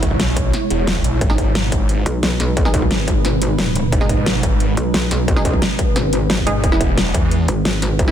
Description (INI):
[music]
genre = dark technical drum and bass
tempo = 177 BPM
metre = 4/4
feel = straight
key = G# minor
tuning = A4 = 436 Hz
[part]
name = swarming drone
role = sustained chords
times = 0.0-8.1 s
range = B2 to C#5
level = -22 LUFS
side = right 1 dB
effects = built-in reverb, vintage 12-bit sampler grit, sidechain pumping
[part]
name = snarling distorted saw bass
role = bass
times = 0.0-7.5 s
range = E1 to E2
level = -20 LUFS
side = equal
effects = overdrive
[part]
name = dubstep drum kit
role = drums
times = 0.0-8.1 s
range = hi-hat, snare drum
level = -22 LUFS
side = equal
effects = studio reverb
[part]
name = electronic kick drum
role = drums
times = 0.0-8.1 s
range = none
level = -19 LUFS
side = equal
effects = distortion, studio reverb
[part]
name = filtered dub chord stab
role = stabs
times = 1.3-8.1 s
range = E3 to G#4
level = -26 LUFS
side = right 2 dB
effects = chorus, dub echo
[part]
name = metallic wobble bass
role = bass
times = 2.1-8.1 s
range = G#1 to B1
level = -20 LUFS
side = equal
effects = chorus
[sound]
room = light reverb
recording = dense, heavily limited modern master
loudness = -15 LUFS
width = side -10 dB against mid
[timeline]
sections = 0.0-8.1 A section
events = none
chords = 0.0 E; 1.2 G#m; 6.6 E